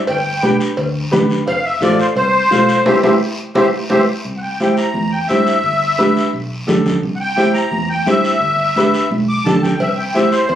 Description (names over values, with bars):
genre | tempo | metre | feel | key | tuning
latin, cumbia | 173 BPM | 4/4 | straight | C major | A4 = 441 Hz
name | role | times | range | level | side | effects
musette accordion | melody | 0.1-10.6 s | G4 to D6 | -17 LUFS | left 1 dB | plate reverb
fingered electric bass | bass | 0.1-10.6 s | F1 to G2 | -24 LUFS | equal | none
cowbell and timbales | percussion | 0.1-4.0, 9.8-10.6 s | none | -21 LUFS | equal | none
guiro | percussion | 0.1-10.6 s | none | -29 LUFS | left 2 dB | none
clear upright piano | accompaniment | 0.4-10.4 s | D4 to C5 | -17 LUFS | equal | none
congas | percussion | 0.4-10.3 s | none | -20 LUFS | right 1 dB | none
room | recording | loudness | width
wet studio reverb, RT60 0.6 s | recorded on a phone in the room, club reverb | -13 LUFS | side -10 dB against mid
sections
0.0-4.2 A section; 4.2-10.6 B section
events
band accent 2.9-4.2; drum fill 3.4-4.2; accordion solo 4.2-10.6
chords
0.1 G; 1.5 F; 2.9 C; 5.6 G; 7.0 C; 8.4 G; 9.8 C